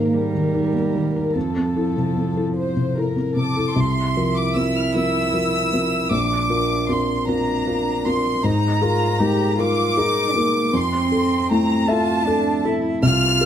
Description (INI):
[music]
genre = neoclassical piano and strings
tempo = 52 BPM (dotted quarters)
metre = 6/8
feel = rubato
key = F major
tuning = A4 = 440 Hz
[part]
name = warm chamber violin section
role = melody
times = 0.0-13.5 s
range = A4 to F6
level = -24 LUFS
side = left 1 dB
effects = none
[part]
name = warm cello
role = second line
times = 0.0-13.5 s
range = F3 to G4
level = -25 LUFS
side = right 5 dB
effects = none
[part]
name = felt-muted upright piano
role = accompaniment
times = 0.0-13.5 s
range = Bb1 to E5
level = -20 LUFS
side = left 1 dB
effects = none
[sound]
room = light reverb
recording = none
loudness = -18 LUFS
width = side -9 dB against mid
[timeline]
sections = 0.0-3.8 A section; 3.8-13.5 B section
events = none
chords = 0.0 Absus2; 1.4 Fmaj7; 3.8 C7sus4; 6.1 Bbadd9; 8.4 Absus2; 10.7 Fmaj7